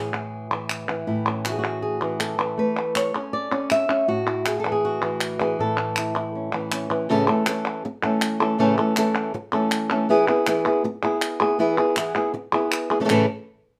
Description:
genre	flamenco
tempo	160 BPM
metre	4/4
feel	straight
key	A major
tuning	A4 = 440 Hz
part	flamenco guitar	melody	0.0-13.2 s	A2 to E5	-24 LUFS	equal	none
part	palmas hand claps	percussion	0.1-13.2 s	none	-29 LUFS	equal	none
room	moderate studio reverb, RT60 0.6 s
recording	none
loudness	-23 LUFS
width	mono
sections	0.0-7.1 A section; 7.1-13.1 B section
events	none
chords	0.0 E/A; 1.1 A; 4.1 E/A; 5.6 A; 10.1 E; 13.1 A

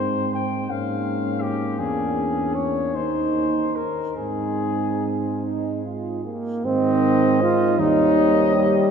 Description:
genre	classical, hymn-like piece for brass band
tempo	46-56 BPM (dotted quarters)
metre	6/8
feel	rubato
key	Ab major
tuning	A4 = 440 Hz
part	warm flugelhorn	melody	0.0-8.9 s	G4 to G5	-26 LUFS	left 5 dB	none
part	mellow French horn section	second line	0.0-8.9 s	Db4 to Db5	-27 LUFS	right 4 dB	none
part	mellow euphonium	accompaniment	0.0-8.9 s	Eb3 to Eb4	-27 LUFS	left 2 dB	none
part	mellow trombone	accompaniment	0.0-8.9 s	G3 to F4	-24 LUFS	right 2 dB	none
part	dark tuba	bass	0.0-8.9 s	Eb2 to Ab2	-28 LUFS	right 2 dB	none
room	wet cathedral reverb, RT60 5.1 s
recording	minimal, uncompressed stereo recording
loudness	-19 LUFS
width	side -7 dB against mid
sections	0.0-6.6 A section; 6.6-8.9 B section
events	none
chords	0.0 Ab; 0.7 Bbm7/Ab; 1.8 E7; 3.0 Eb5; 4.2 Ab; 7.8 Eb7

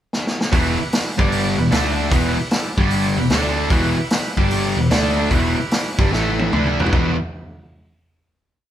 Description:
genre	blues rock power trio and southern rock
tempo	150 BPM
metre	4/4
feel	swing 67% on 8ths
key	E minor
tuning	A4 = 438 Hz
part	vintage drum kit	drums	0.1-7.1 s	hi-hat, kick drum, snare drum, toms	-20 LUFS	equal	none
part	overdriven tonewheel organ	sustained chords	0.5-7.2 s	G3 to B5	-28 LUFS	right 2 dB	slow rotary speaker
part	overdriven electric guitar	riff	0.5-7.2 s	E2 to D4	-19 LUFS	equal	none
part	vintage muted picked electric bass	bass	0.5-7.2 s	E1 to D2	-24 LUFS	equal	none
room	moderate large studio reverb, RT60 0.9 s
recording	band playing live in one room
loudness	-16 LUFS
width	side -11 dB against mid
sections	0.0-0.5 pickup bar; 0.5-6.9 riff; 6.9-8.6 final chord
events	drum fill 0.1-0.5, 6.1-6.9; tonewheel organ fill 2.9-3.7, 6.3-6.9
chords	0.0 N.C.; 0.5 Em; 1.1 G5; 1.5 Em; 1.7 D5; 2.1 Em; 2.7 G5; 3.1 Em; 3.3 D5; 3.7 Em; 4.3 G5; 4.7 Em; 4.9 D5; 5.3 Em; 6.1 A5; 6.5 Em

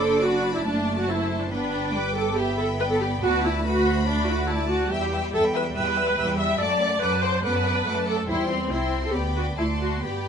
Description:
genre	quick classical-period movement for string orchestra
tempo	141 BPM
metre	4/4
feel	rubato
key	unclear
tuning	A4 = 439 Hz
part	clear symphonic violin section	melody	0.0-10.3 s	A5 to E6	-34 LUFS	left 4 dB	none
part	rich studio violin section	second line	0.0-10.3 s	A4 to B5	-31 LUFS	left 3 dB	none
part	rich symphonic viola section	accompaniment	0.0-10.3 s	C4 to E5	-24 LUFS	equal	none
part	rich symphonic cello section	bass	0.0-10.3 s	F#3 to D4	-30 LUFS	right 2 dB	none
part	rich symphonic double bass section	bass	0.0-10.3 s	F#1 to G2	-29 LUFS	right 2 dB	none
room	moderate large studio reverb, RT60 1.1 s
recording	nothing above 10.4 kHz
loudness	-21 LUFS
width	side -7 dB against mid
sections	0.0-10.3 A section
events	none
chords	0.0 D/F#; 1.5 G; 3.2 D; 4.9 Em; 6.6 D/F#; 8.3 C/E; 9.1 G/D; 9.6 D7

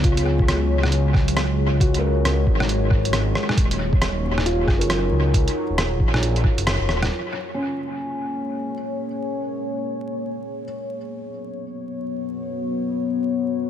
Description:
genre	future garage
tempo	136 BPM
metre	4/4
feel	swing 61% on 16ths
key	unclear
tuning	A4 = 439 Hz
part	felt-muted upright piano	accompaniment	0.0-10.7 s	Db4 to Bb4	-28 LUFS	left 1 dB	sidechain pumping, low-pass filter, tape echo
part	deep dark ambient pad	sustained chords	0.0-13.7 s	F#3 to C#5	-26 LUFS	left 2 dB	chorus, built-in reverb, sidechain pumping
part	swelling detuned saw bass	bass	0.0-7.1 s	Eb1 to Db2	-22 LUFS	equal	none
part	electronic kick drum	drums	0.0-6.5 s	none	-19 LUFS	equal	none
part	lo-fi sampler-style drum kit	drums	0.0-7.1 s	hi-hat, rim click	-25 LUFS	right 1 dB	dub echo
room	light reverb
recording	echo-heavy mix, vinyl crackle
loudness	-19 LUFS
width	side -10 dB against mid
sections	0.0-7.1 A section; 7.1-13.7 B section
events	band accent 6.7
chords	0.0 Dbsus4; 3.6 Ebm7; 7.1 Bbm7; 10.6 Bsus2

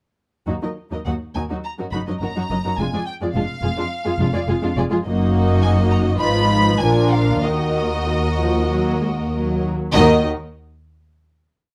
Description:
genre	quick classical-period movement for string orchestra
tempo	94-108 BPM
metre	4/4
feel	rubato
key	Eb minor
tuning	A4 = 438 Hz
part	rich studio violin section	second line	0.5-10.3 s	D4 to Eb5	-27 LUFS	equal	none
part	rich symphonic viola section	accompaniment	0.5-10.3 s	Eb3 to F4	-26 LUFS	equal	none
part	warm symphonic cello section	bass	0.5-10.3 s	Eb2 to Bb2	-25 LUFS	equal	none
part	warm symphonic double bass section	bass	0.5-10.3 s	F1 to Eb2	-25 LUFS	equal	none
part	clear studio violin section	melody	1.1-10.3 s	Eb5 to Cb6	-27 LUFS	equal	none
room	light reverb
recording	dark, warm production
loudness	-20 LUFS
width	mono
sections	0.5-9.9 A section; 9.9-11.7 final chord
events	none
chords	0.5 Ebm; 2.8 Ddim/F (rootless); 5.1 Ebm/Gb; 6.2 Fm7b5/Ab; 6.8 Bb7; 7.4 Ebm; 9.9 N.C.

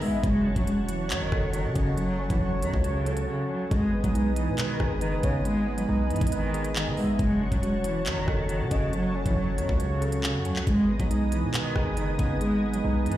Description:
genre	hip hop, drill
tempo	138 BPM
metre	4/4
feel	half-time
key	G# phrygian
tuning	A4 = 440 Hz
part	dark cello	melody	0.0-13.2 s	C#3 to G#3	-28 LUFS	equal	ping-pong delay
part	warm velvety synth lead	second line	0.0-10.2 s	B4 to E5	-36 LUFS	left 3 dB	chorus, ping-pong delay
part	overdriven tine electric piano	accompaniment	0.0-13.2 s	F#3 to C#5	-32 LUFS	moving between right 2 dB and right 9 dB	auto-pan
part	warm analog pad	sustained chords	0.0-13.2 s	G#4 to D#6	-37 LUFS	equal	chorus
part	distorted 808-style bass	bass	0.0-13.2 s	E1 to D#3	-30 LUFS	equal	distortion
part	drill drum kit	drums	0.0-13.2 s	handclaps, hi-hat, kick drum, rim click	-29 LUFS	equal	none
room	little or no reverb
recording	played on a big sound system in a bare room, stone room reverb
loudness	-24 LUFS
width	side -13 dB against mid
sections	0.0-10.7 A section; 10.7-13.2 A section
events	break 3.3-3.7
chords	0.2 F#m; 3.7 G#m; 7.2 F#m; 10.7 G#m

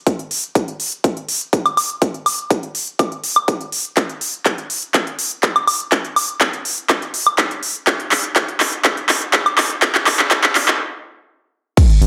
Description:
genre	progressive house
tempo	123 BPM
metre	4/4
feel	straight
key	unclear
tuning	A4 = 441 Hz
part	big-room dance drum kit	drums	0.1-12.1 s	crash cymbal, handclaps, hi-hat, ride cymbal, woodblock	-19 LUFS	equal	sidechain pumping on hats, sidechain pumping on perc, sidechain pumping on cymbals
part	electronic kick drum	drums	0.1-11.9 s	none	-19 LUFS	equal	high-pass filter on kick, high-pass filter on room
part	round analog bass	bass	12.0-12.1 s	Ab1	-13 LUFS	equal	sidechain pumping
room	moderate digital room reverb, RT60 1.0 s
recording	high-pass filter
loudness	-18 LUFS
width	mono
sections	0.0-11.8 A section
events	build-up 0.0-11.8; drum fill 4.0-10.8; stop 10.8-11.8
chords	none

